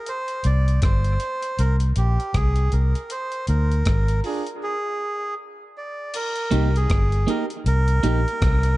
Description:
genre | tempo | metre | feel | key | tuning
dub reggae | 79 BPM | 4/4 | swing 60% on 16ths | C minor | A4 = 440 Hz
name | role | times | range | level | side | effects
melodica | melody | 0.0-8.8 s | G4 to D5 | -27 LUFS | right 1 dB | dub echo
breakbeat sampler-style drum kit | drums | 0.1-8.8 s | crash cymbal, hi-hat, kick drum, rim click | -25 LUFS | equal | none
vintage muted fingered electric bass | bass | 0.4-8.8 s | G1 to D2 | -19 LUFS | equal | none
clear horn section | second line | 4.2-4.4 s | D4 to Ab4 | -32 LUFS | right 3 dB | dub echo
electric guitar at the edge of break-up | accompaniment | 6.5-8.2 s | Bb3 to G4 | -26 LUFS | right 3 dB | dub echo
room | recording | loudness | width
little or no reverb | dark, warm production, nothing above 10.6 kHz | -19 LUFS | side -18 dB against mid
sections
0.0-6.1 A section; 6.1-8.8 B section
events
break 0.0-6.1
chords
0.1 C5; 3.1 D(b5, no3); 6.1 Cm7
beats
| 0.07 0.83 1.58 2.34 | 3.10 3.86 4.62 5.38 | 6.14 6.90 7.66 8.42

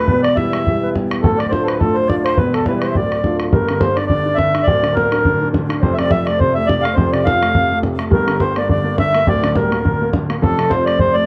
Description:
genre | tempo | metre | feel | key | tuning
celtic folk, Celtic reel | 209 BPM | 4/4 | swing 56% on 8ths | D dorian, G dorian from 3.5 s | A4 = 443 Hz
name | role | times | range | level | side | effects
mellow accordion | melody | 0.0-11.3 s | A4 to F5 | -21 LUFS | equal | plate reverb
wooden flute | second line | 0.0-11.3 s | A4 to G5 | -26 LUFS | equal | none
clear upright piano | accompaniment | 0.0-11.3 s | D1 to F4 | -21 LUFS | equal | none
bodhran | percussion | 0.1-11.1 s | none | -22 LUFS | equal | none
room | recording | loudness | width
moderate studio reverb, RT60 0.8 s | none | -16 LUFS | mono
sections
0.0-3.5 A section; 3.5-11.3 B section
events
none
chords
0.1 Em; 1.2 Dm; 2.4 Em; 3.0 Dm; 3.5 Gm; 5.8 Fmaj13; 8.1 Gm; 10.4 Dm7/F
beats
| 0.08 0.36 0.65 0.94 | 1.23 1.51 1.80 2.09 | 2.38 2.66 2.95 3.24 | 3.52 3.81 4.10 4.39 | 4.67 4.96 5.25 5.53 | 5.82 6.11 6.39 6.68 | 6.97 7.26 7.54 7.83 | 8.12 8.41 8.70 8.98 | 9.27 9.56 9.85 10.13 | 10.42 10.71 10.99

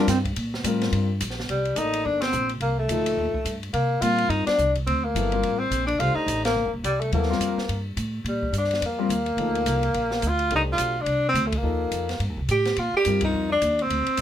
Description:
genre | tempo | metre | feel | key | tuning
modal jazz | 213 BPM | 4/4 | swing 60% on 8ths | C dorian | A4 = 440 Hz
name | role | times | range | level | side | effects
warm grand piano | accompaniment | 0.0-13.5 s | Bb2 to D5 | -28 LUFS | left 6 dB | none
upright bass | bass | 0.0-14.2 s | Eb1 to C3 | -27 LUFS | equal | none
open jazz drum kit | drums | 0.1-14.2 s | hi-hat, kick drum, ride cymbal, snare drum | -33 LUFS | equal | none
mellow tenor saxophone | melody | 1.5-14.2 s | G3 to G4 | -24 LUFS | equal | none
room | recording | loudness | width
light reverb | none | -22 LUFS | side -10 dB against mid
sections
0.0-1.5 A section; 1.5-14.2 B section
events
band accent 2.2, 4.4, 6.4, 11.5, 13.2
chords
0.0 Gm; 1.5 Cm7; 3.7 Gm; 6.0 Cm7; 8.3 Gm; 10.5 Cm7; 12.8 Gm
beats
0.08 | 0.36 0.64 0.92 1.20 | 1.49 1.77 2.05 2.33 | 2.61 2.90 3.18 3.46 | 3.74 4.02 4.31 4.59 | 4.87 5.15 5.43 5.72 | 6.00 6.28 6.56 6.84 | 7.13 7.41 7.69 7.97 | 8.26 8.54 8.82 9.10 | 9.38 9.67 9.95 10.23 | 10.51 10.79 11.08 11.36 | 11.64 11.92 12.21 12.49 | 12.77 13.05 13.34 13.62 | 13.90 14.19

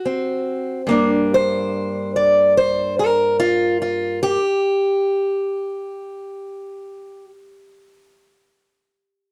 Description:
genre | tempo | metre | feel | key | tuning
acoustic country blues, solo or duo | 48 BPM (dotted quarters) | 12/8 | straight | G harmonic minor | A4 = 440 Hz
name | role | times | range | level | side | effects
fingerpicked steel-string acoustic guitar | solo | 0.0-7.2 s | G2 to D5 | -20 LUFS | equal | none
room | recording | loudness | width
moderate studio reverb, RT60 0.7 s | dark, warm production | -19 LUFS | mono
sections
0.9-5.8 A section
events
none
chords
0.0 Ab7; 0.9 Gm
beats
| 0.85 2.09 3.34 4.58

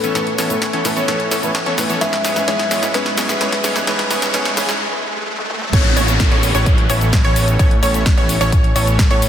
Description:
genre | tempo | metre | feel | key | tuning
EDM, festival progressive house | 129 BPM | 4/4 | straight | A major | A4 = 441 Hz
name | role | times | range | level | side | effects
kalimba | melody | 0.0-5.2 s | A4 to E5 | -24 LUFS | left 4 dB | digital delay
felt-muted upright piano | accompaniment | 0.0-4.8 s | G#2 to B4 | -24 LUFS | right 2 dB | sidechain pumping, digital delay
lush unison pad | sustained chords | 0.0-9.3 s | G#3 to C#5 | -28 LUFS | left 1 dB | none
supersaw stab | riff | 0.0-9.3 s | E3 to C#5 | -22 LUFS | equal | sidechain pumping, digital delay
house drum kit | drums | 0.0-9.3 s | crash cymbal, hi-hat, rim click, shaker, snare drum, toms | -21 LUFS | left 1 dB | high-pass filter on snare, high-pass filter on hats, high-pass filter on perc, high-pass filter on toms, high-pass filter on cymbals
riser and downlifter | sound effects | 0.3-9.3 s | none | -25 LUFS | equal | none
wide unison pluck | arpeggios | 5.7-9.3 s | C#5 | -22 LUFS | right 1 dB | sidechain pumping, digital delay
fat analog bass | bass | 5.7-9.3 s | A1 to A2 | -18 LUFS | equal | tube saturation, sidechain pumping
electronic kick drum | drums | 5.7-9.1 s | none | -14 LUFS | equal | none
room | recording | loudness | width
moderate lush hall reverb, RT60 1.8 s | dense, heavily limited modern master, high-pass filter | -14 LUFS | side -10 dB against mid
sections
0.0-5.7 A section; 5.7-9.3 B section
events
build-up 0.0-5.7; drum fill 0.0-4.8, 5.4-5.7; riser 0.3-5.7; break 4.8-5.7; drop 5.7-9.3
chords
0.0 Aadd9; 2.0 E; 5.7 Aadd9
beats
| 0.15 0.62 1.08 1.55 | 2.01 2.48 2.94 3.41 | 3.87 4.34 4.80 5.27 | 5.73 6.20 6.66 7.13 | 7.59 8.06 8.52 8.99

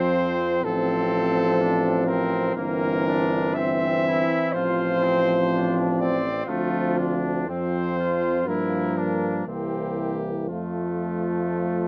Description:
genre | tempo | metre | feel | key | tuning
classical, brass quintet | 58-63 BPM | 4/4 | rubato | F major | A4 = 440 Hz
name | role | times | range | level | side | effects
warm cornet | melody | 0.0-11.9 s | F4 to E5 | -29 LUFS | equal | none
mellow trumpet | second line | 0.0-11.9 s | A3 to F4 | -33 LUFS | equal | none
clear French horn | accompaniment | 0.0-11.9 s | A3 to C4 | -31 LUFS | equal | none
warm euphonium | accompaniment | 0.0-11.9 s | E3 to F3 | -30 LUFS | equal | none
clear tuba | bass | 0.0-11.9 s | G1 to G2 | -31 LUFS | equal | none
room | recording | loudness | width
moderate studio ambience, RT60 0.5 s | worn, warbling old tape, cassette tape, warbly pitch drift | -24 LUFS | mono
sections
0.0-11.9 A section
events
none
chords
0.0 F5; 0.7 F/A; 2.6 C7/G; 4.5 F/A; 6.5 Dm7; 8.5 Gm7; 9.5 C7; 10.5 F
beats
0.65 1.61 | 2.57 3.57 4.54 5.51 | 6.48 7.49 8.47 9.47 | 10.49 11.53

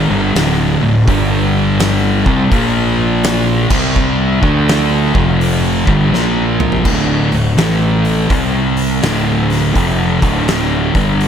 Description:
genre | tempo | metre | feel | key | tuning
stoner and doom metal | 83 BPM | 4/4 | swing 65% on 8ths | D minor | A4 = 440 Hz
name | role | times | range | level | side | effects
thick fuzz guitar | riff | 0.0-11.3 s | D2 to D4 | -16 LUFS | left 9 dB | distortion
thick fuzz guitar | riff | 0.0-11.3 s | D2 to D4 | -17 LUFS | right 8 dB | distortion
fuzz fingered electric bass | bass | 0.0-11.3 s | D1 to D2 | -18 LUFS | equal | overdrive
oversized low-tuned drum kit | drums | 0.4-11.3 s | crash cymbal, hi-hat, kick drum, snare drum, toms | -18 LUFS | equal | none
room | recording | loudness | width
little or no reverb | none | -11 LUFS | side -8 dB against mid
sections
0.0-6.9 A section; 6.9-11.3 B section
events
drum fill 6.1-6.9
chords
0.0 D5; 1.1 G5; 2.5 Bb5; 3.6 C5; 4.3 D5; 5.0 F5; 5.8 G5; 6.1 Bb5; 6.9 D5; 7.6 A5; 8.3 C5; 9.0 Dm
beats
0.35 | 1.07 1.79 2.52 3.24 | 3.96 4.68 5.41 6.13 | 6.86 7.58 8.31 9.03 | 9.76 10.48 11.21

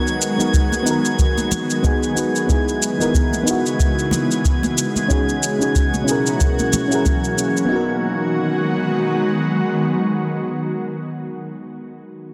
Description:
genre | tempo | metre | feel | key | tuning
sunset chillout | 92 BPM | 4/4 | swing 57% on 16ths | G# minor | A4 = 440 Hz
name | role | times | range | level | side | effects
mellow FM electric piano | accompaniment | 0.0-12.3 s | B3 to B4 | -24 LUFS | equal | chorus, low-pass filter, digital delay
ethereal airy pad | sustained chords | 0.0-11.1 s | B2 to F#4 | -24 LUFS | equal | ensemble chorus, built-in reverb
drifting glass-harmonics texture | texture | 0.0-7.7 s | G#6 | -30 LUFS | equal | chorus, built-in reverb
cabasa | drums | 0.1-7.7 s | none | -27 LUFS | equal | none
electronic kick drum | drums | 0.5-7.2 s | none | -21 LUFS | equal | none
congas | percussion | 0.7-7.2 s | none | -27 LUFS | equal | none
room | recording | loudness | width
moderate lush hall reverb, RT60 2.3 s | dense, heavily limited modern master | -19 LUFS | mono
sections
0.0-7.7 A section; 7.7-10.3 B section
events
filter sweep on FM electric piano 0.0-7.7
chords
0.0 G#m7; 2.5 C#m7; 5.1 B6; 6.4 F#7; 7.7 G#m7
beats
0.53 1.19 1.84 | 2.49 3.14 3.79 4.45 | 5.10 5.75 6.40 7.05 | 7.71 8.36 9.01 9.66

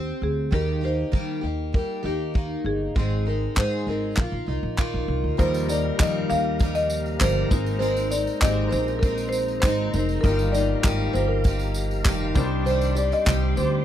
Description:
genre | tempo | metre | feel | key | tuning
acoustic pop | 99 BPM | 4/4 | straight | Eb major | A4 = 437 Hz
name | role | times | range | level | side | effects
marimba with medium mallets | melody | 0.0-13.7 s | G4 to F5 | -27 LUFS | equal | none
picked plugged-in steel-string acoustic guitar | accompaniment | 0.0-13.8 s | G2 to Bb4 | -28 LUFS | left 1 dB | double-tracked left and right
upright bass | bass | 0.0-13.8 s | F1 to Eb3 | -26 LUFS | right 1 dB | none
soft brush drum kit | drums | 0.5-13.7 s | handclaps, kick drum, tambourine | -22 LUFS | equal | none
warm grand piano | accompaniment | 5.4-13.8 s | G3 to C5 | -32 LUFS | left 7 dB | none
tonewheel organ | sustained chords | 5.4-13.8 s | Ab3 to D6 | -36 LUFS | equal | chorus vibrato, slow rotary speaker
tambourine | percussion | 5.4-13.4 s | none | -42 LUFS | right 8 dB | none
room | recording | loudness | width
little or no reverb | dry, close 1970s-style studio recording | -21 LUFS | side -11 dB against mid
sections
0.0-5.4 A section; 5.4-13.8 B section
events
none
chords
0.0 Cm/Eb; 0.5 Eb; 3.0 Ab; 4.2 Bbsus4; 5.4 Ebadd9; 7.5 Abadd9; 10.2 Ebadd9/G; 12.4 Cmadd9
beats
| 0.53 1.14 1.75 2.35 | 2.96 3.57 4.18 4.79 | 5.39 6.00 6.61 7.21 | 7.82 8.42 9.03 9.63 | 10.24 10.84 11.45 12.05 | 12.66 13.27

